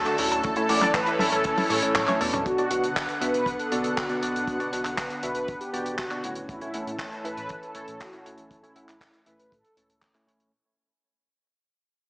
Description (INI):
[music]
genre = italo disco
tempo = 119 BPM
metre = 4/4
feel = straight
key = unclear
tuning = A4 = 440 Hz
[part]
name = mellow synth brass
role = melody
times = 0.0-10.2 s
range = E4 to D5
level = -29 LUFS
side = equal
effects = chorus, digital delay
[part]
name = lush unison pad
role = sustained chords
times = 0.0-10.5 s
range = D3 to F#5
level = -30 LUFS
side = equal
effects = chorus
[part]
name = round analog bass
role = bass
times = 0.0-10.5 s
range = F#1 to A2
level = -46 LUFS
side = equal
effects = none
[part]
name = analog pluck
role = arpeggios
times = 0.1-2.4 s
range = A3 to C#5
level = -31 LUFS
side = equal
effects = none
[part]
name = barky tine electric piano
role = stabs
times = 0.1-10.5 s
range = A2 to F#5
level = -30 LUFS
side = equal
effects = medium stereo tremolo, low-pass filter
[part]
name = warm soul drum kit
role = drums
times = 0.1-10.5 s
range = handclaps, hi-hat, toms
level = -29 LUFS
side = equal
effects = small room ambience, gated reverb
[part]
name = kick drum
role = drums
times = 0.4-10.1 s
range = none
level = -38 LUFS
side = equal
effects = small room ambience
[sound]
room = moderate lush hall reverb, RT60 1.9 s, small room ambience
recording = vinyl crackle, small speaker sound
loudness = -23 LUFS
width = side -28 dB against mid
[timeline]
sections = 0.0-2.5 A section; 2.5-10.5 B section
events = drum fill 2.0-2.5; fade-out 2.5-10.5; filter sweep on tine electric piano 2.5-10.5; filter sweep on analog synth pad 2.5-10.5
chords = 0.4 A; 2.5 Bm; 6.5 A